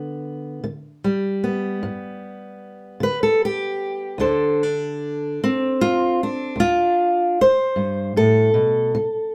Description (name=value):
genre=acoustic country blues, solo or duo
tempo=50 BPM (dotted quarters)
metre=12/8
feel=straight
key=unclear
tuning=A4 = 443 Hz
part: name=fingerpicked steel-string acoustic guitar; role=solo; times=0.0-9.3 s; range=D2 to C5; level=-21 LUFS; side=equal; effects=none
room=moderate small room ambience, RT60 0.5 s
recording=none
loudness=-21 LUFS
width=mono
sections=0.0-9.3 A section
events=none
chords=0.0 G; 4.2 D5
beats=0.64 1.83 3.02 | 4.21 5.40 6.59 7.77 | 8.96